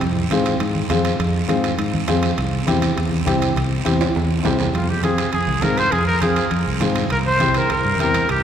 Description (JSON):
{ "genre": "latin, cumbia", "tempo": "203 BPM", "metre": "4/4", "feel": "straight", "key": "F harmonic minor", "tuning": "A4 = 439 Hz", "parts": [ { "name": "fingered electric bass", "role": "bass", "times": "0.0-8.4 s", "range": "C2 to Ab2", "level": "-21 LUFS", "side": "right 1 dB", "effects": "none" }, { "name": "guiro", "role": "percussion", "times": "0.0-8.4 s", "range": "none", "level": "-30 LUFS", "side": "right 6 dB", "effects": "none" }, { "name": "timbales", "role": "percussion", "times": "0.0-8.4 s", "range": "none", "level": "-29 LUFS", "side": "right 5 dB", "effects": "none" }, { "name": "dark upright piano", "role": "accompaniment", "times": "0.3-8.2 s", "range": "C4 to Ab4", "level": "-22 LUFS", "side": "left 3 dB", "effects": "none" }, { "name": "congas", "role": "percussion", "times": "0.3-8.1 s", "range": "none", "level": "-27 LUFS", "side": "equal", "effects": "none" }, { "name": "warm trumpet", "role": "melody", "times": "4.7-8.4 s", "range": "F4 to C5", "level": "-20 LUFS", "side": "equal", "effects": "none" } ], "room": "wet church reverb, RT60 3.8 s", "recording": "recorded in a church or concert hall", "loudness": "-17 LUFS", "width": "side -9 dB against mid", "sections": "0.0-4.7 A section; 4.7-8.4 B section", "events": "drum fill 4.0-4.7", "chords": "0.0 Fm; 2.4 C; 4.7 Fm; 7.1 C7" }